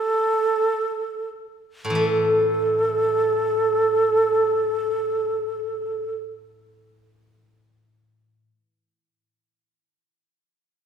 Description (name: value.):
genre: chinese traditional, Chinese chamber ensemble.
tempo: free time.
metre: none.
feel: none.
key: unclear.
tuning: A4 = 439 Hz.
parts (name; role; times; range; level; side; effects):
breathy xiao; melody; 0.0-6.2 s; A4; -20 LUFS; right 2 dB; none.
steel-string zither; accompaniment; 1.8-8.5 s; A2 to A3; -24 LUFS; left 1 dB; none.
room: wet recital hall reverb, RT60 1.6 s.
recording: none.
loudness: -20 LUFS.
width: side -8 dB against mid.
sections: 0.0-2.0 A section; 2.0-7.0 B section.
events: slowing down 0.0-2.0.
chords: none.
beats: free time.